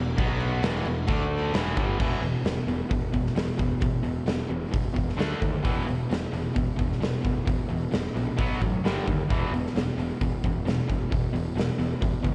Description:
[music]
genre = hard rock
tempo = 132 BPM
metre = 4/4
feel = straight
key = E minor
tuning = A4 = 441 Hz
[part]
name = distorted electric guitar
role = riff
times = 0.0-12.3 s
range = E2 to D4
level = -34 LUFS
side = equal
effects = overdrive
[part]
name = overdriven electric guitar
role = riff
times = 0.0-12.3 s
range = E2 to D4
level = -34 LUFS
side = equal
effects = slapback echo
[part]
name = fuzz picked electric bass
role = bass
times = 0.0-12.3 s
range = E1 to D#2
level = -33 LUFS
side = equal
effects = overdrive
[part]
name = huge arena drum kit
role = drums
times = 0.2-12.3 s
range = crash cymbal, hi-hat, kick drum, snare drum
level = -31 LUFS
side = equal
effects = none
[sound]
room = moderate concert hall reverb, RT60 2.1 s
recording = big arena sound, cassette tape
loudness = -27 LUFS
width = mono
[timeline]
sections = 0.0-2.0 A section; 2.0-12.3 B section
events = none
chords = 0.2 B5; 0.6 E5; 1.1 D5; 1.6 Em; 2.0 E5; 5.2 D5; 5.7 E5; 8.4 B5; 8.8 G5; 9.3 E5

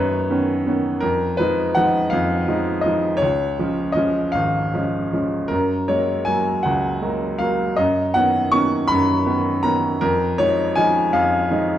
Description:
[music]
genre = classical, lyrical solo piano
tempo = 54 BPM (dotted quarters)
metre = 6/8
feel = rubato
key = unclear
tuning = A4 = 443 Hz
[part]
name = clear upright piano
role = solo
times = 0.0-11.8 s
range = G#1 to C#6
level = -17 LUFS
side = equal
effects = none
[sound]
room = moderate recital hall reverb, RT60 1.5 s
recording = dark, warm production, nothing above 10.6 kHz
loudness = -17 LUFS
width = side -11 dB against mid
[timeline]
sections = 0.0-11.8 A section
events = none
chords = 0.0 Badd9/F#; 1.0 Fm7b5; 3.2 C#; 5.5 F#add9; 7.8 Badd9/F#; 10.0 Fm7

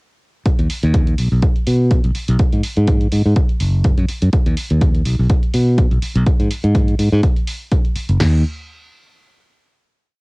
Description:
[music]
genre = filtered disco house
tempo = 124 BPM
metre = 4/4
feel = swing 55% on 16ths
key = unclear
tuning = A4 = 440 Hz
[part]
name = modern bright fingered electric bass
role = bass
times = 0.5-8.4 s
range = Gb1 to Cb3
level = -15 LUFS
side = equal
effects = sidechain pumping, low-pass filter
[part]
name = electronic hi-hat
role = drums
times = 0.5-8.2 s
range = none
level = -31 LUFS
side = right 1 dB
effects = sidechain pumping on hats, cassette tape
[part]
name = punchy analog drum machine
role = drums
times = 0.5-8.3 s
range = crash cymbal, kick drum, snare drum, toms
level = -16 LUFS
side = equal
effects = cassette tape
[sound]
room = little or no reverb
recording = home recording on cassette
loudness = -14 LUFS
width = side -30 dB against mid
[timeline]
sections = 0.5-8.2 groove; 8.2-10.1 final chord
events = none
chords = none

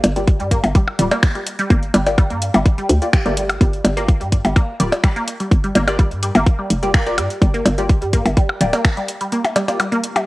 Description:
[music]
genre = minimal techno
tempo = 126 BPM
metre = 4/4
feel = straight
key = G minor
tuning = A4 = 440 Hz
[part]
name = hollow knocking FM bass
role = bass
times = 0.0-8.7 s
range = D1 to G2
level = -19 LUFS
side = equal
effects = sidechain pumping
[part]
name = booming analog drum machine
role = drums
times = 0.0-10.3 s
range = finger snaps, hi-hat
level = -25 LUFS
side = equal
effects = cassette tape
[part]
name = percussion blips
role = percussion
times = 0.0-10.3 s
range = none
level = -21 LUFS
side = left 1 dB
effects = cassette tape
[part]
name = resonant blip pluck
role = riff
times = 0.2-10.2 s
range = G3 to G4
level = -23 LUFS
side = equal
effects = phaser, ensemble chorus, sidechain pumping, cassette tape, analog delay
[part]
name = filtered dub chord stab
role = stabs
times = 0.2-9.8 s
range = Bb3 to D5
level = -25 LUFS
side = left 1 dB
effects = phaser, wide subtle chorus, cassette tape, analog delay
[part]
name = electronic kick drum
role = drums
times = 0.3-8.9 s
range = none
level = -14 LUFS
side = equal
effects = overdrive, cassette tape
[sound]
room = light reverb, digital ambience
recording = home recording on cassette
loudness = -14 LUFS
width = side -19 dB against mid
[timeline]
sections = 0.0-10.3 A section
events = none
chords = 0.0 Gm7

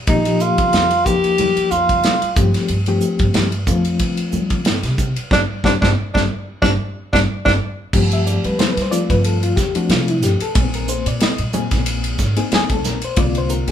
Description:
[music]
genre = electric jazz fusion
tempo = 92 BPM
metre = 4/4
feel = swing 55% on 16ths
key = unclear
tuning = A4 = 438 Hz
[part]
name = breathy tenor saxophone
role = melody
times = 0.1-7.5 s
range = D4 to G4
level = -17 LUFS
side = right 1 dB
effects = none
[part]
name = reed electric piano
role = accompaniment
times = 0.1-13.7 s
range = D3 to E5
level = -21 LUFS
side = left 4 dB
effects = fast tremolo
[part]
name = upright bass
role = bass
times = 0.1-13.7 s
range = G1 to G3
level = -21 LUFS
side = right 1 dB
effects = none
[part]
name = modern studio drum kit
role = drums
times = 0.1-13.7 s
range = crash cymbal, hi-hat, kick drum, ride cymbal, snare drum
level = -20 LUFS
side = equal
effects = none
[part]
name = congas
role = percussion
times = 0.1-13.3 s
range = none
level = -28 LUFS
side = right 1 dB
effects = none
[sound]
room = light reverb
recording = band playing live in one room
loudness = -15 LUFS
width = side -9 dB against mid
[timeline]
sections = 0.0-7.9 A section; 7.9-13.7 B section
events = band accent 5.3-7.9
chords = 0.0 F9sus4; 2.4 G9sus4; 10.6 Bb9sus4; 13.2 C9sus4

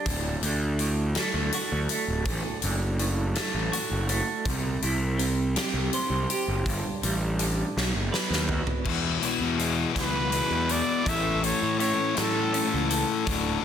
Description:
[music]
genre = quiet-loud alternative rock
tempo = 54 BPM (dotted quarters)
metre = 6/8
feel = straight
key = D mixolydian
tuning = A4 = 440 Hz
[part]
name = electric guitar through a small old amp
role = arpeggios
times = 0.0-13.6 s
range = D2 to C5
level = -31 LUFS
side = right 3 dB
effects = tremolo, analog delay
[part]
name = fuzz picked electric bass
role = bass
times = 0.1-13.6 s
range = D1 to A2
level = -28 LUFS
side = equal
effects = overdrive
[part]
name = big rock drum kit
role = drums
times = 0.1-13.4 s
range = crash cymbal, hi-hat, kick drum, snare drum, toms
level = -30 LUFS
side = left 1 dB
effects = none
[part]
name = thick fuzz guitar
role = riff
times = 8.8-13.6 s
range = D2 to A3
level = -27 LUFS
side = left 10 dB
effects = distortion
[part]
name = clear trumpet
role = melody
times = 10.0-13.0 s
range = A4 to E5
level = -29 LUFS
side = right 2 dB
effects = analog delay
[sound]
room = light reverb, small room ambience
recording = dense, heavily limited modern master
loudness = -24 LUFS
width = side -9 dB against mid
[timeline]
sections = 0.0-8.9 A section; 8.9-13.6 B section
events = drum fill 7.8-8.9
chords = 0.1 D; 4.5 C; 6.7 Gsus2; 7.8 B; 8.9 E; 11.1 A

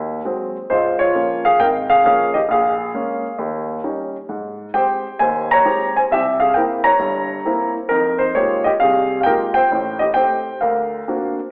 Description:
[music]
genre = solo jazz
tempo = 133 BPM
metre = 4/4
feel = swing 66% on 8ths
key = F minor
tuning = A4 = 442 Hz
[part]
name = warm concert grand piano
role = solo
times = 0.0-11.4 s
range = G1 to Bb5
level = -18 LUFS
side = equal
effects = none
[sound]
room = wet recital hall reverb, RT60 1.5 s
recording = recorded in a church or concert hall, telephone sound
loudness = -18 LUFS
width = mono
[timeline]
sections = 0.0-11.5 A section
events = none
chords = 0.0 Ab7; 0.7 Db6; 2.5 Bbm7; 3.4 Eb7; 4.3 Abmaj7; 6.1 C7; 7.9 Fm11; 9.7 Am7; 10.6 D7alt

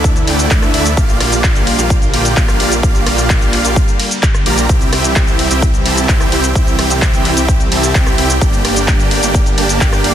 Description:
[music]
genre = EDM, festival progressive house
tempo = 129 BPM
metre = 4/4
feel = straight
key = unclear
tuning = A4 = 439 Hz
[part]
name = supersaw pad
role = sustained chords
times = 0.0-10.1 s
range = D3 to G4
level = -22 LUFS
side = right 1 dB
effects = sidechain pumping
[part]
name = supersaw chords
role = riff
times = 0.0-10.1 s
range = A3 to Bb5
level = -16 LUFS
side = right 1 dB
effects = sidechain pumping, ping-pong delay
[part]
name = wide detuned saw bass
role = bass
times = 0.0-10.1 s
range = G1 to D2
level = -18 LUFS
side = equal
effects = chorus, tube saturation, sidechain pumping
[part]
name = big-room dance drum kit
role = drums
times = 0.0-10.1 s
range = handclaps, hi-hat, ride cymbal, rim click, shaker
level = -18 LUFS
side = left 1 dB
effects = none
[part]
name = electronic kick drum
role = drums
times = 0.0-9.9 s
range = none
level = -13 LUFS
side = equal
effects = none
[sound]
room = light reverb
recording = dense, heavily limited modern master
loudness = -10 LUFS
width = side -10 dB against mid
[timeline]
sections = 0.0-10.1 A section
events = none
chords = 0.0 Dsus2; 1.0 Bb6; 4.7 C; 8.4 Gm

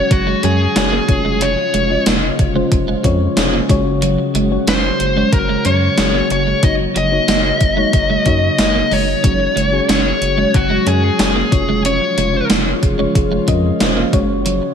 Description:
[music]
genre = 1980s-style pop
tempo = 92 BPM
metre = 4/4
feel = straight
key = unclear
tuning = A4 = 442 Hz
[part]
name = dark smooth lead guitar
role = melody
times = 0.0-12.5 s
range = Gb4 to Eb5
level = -18 LUFS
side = left 1 dB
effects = overdrive, ping-pong delay
[part]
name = mellow FM electric piano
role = accompaniment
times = 0.0-14.7 s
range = Ab3 to F5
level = -21 LUFS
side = left 5 dB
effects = chorus, slapback echo
[part]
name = glassy FM pad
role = sustained chords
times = 0.0-14.7 s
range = Db3 to Gb4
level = -23 LUFS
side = equal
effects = ensemble chorus, built-in reverb
[part]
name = clean electric guitar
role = riff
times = 0.0-14.6 s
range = F3 to Eb4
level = -22 LUFS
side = right 6 dB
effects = ensemble chorus
[part]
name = round analog bass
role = bass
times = 0.1-14.6 s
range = F1 to Gb2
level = -21 LUFS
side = equal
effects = none
[part]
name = gated 80s digital drum machine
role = drums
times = 0.1-14.6 s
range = hi-hat, kick drum, snare drum, tambourine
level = -17 LUFS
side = equal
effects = gated reverb, gated reverb snare, overdrive
[part]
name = marimba with medium mallets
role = second line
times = 12.5-14.7 s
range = F4 to Db5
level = -26 LUFS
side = right 4 dB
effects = ping-pong delay
[sound]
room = moderate scoring stage reverb, RT60 1.8 s, digital ambience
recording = big arena sound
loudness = -13 LUFS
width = side -7 dB against mid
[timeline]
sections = 0.0-14.7 A section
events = none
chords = 0.0 Gbsus2; 1.1 Db/F; 3.7 Gbsus2; 6.6 Ebm7/Gb; 9.2 Gbsus2; 11.5 Db/F; 14.1 Gbsus2

